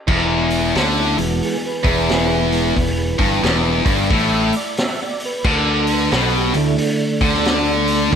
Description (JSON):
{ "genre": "blues rock power trio and southern rock", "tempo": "90 BPM", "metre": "4/4", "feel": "swing 63% on 8ths", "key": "E mixolydian", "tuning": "A4 = 440 Hz", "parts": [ { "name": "tight distorted guitar", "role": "riff", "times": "0.1-8.2 s", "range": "E2 to D3", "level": "-18 LUFS", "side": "left 1 dB", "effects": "distortion" }, { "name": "growling fingered electric bass", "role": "bass", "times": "0.1-8.2 s", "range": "E1 to D2", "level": "-22 LUFS", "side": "equal", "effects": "overdrive" }, { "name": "vintage drum kit", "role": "drums", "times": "0.1-8.2 s", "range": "crash cymbal, hi-hat, kick drum, snare drum", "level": "-22 LUFS", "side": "equal", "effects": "none" }, { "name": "percussive tonewheel organ", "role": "sustained chords", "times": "0.8-8.2 s", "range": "D3 to E5", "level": "-23 LUFS", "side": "right 3 dB", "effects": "chorus vibrato, slow rotary speaker" } ], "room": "moderate scoring stage reverb, RT60 1.6 s, studio ambience", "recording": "big arena sound", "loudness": "-15 LUFS", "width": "side -7 dB against mid", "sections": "0.1-8.2 A section", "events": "tonewheel organ solo 0.1-8.2", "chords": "0.1 E; 5.4 D5" }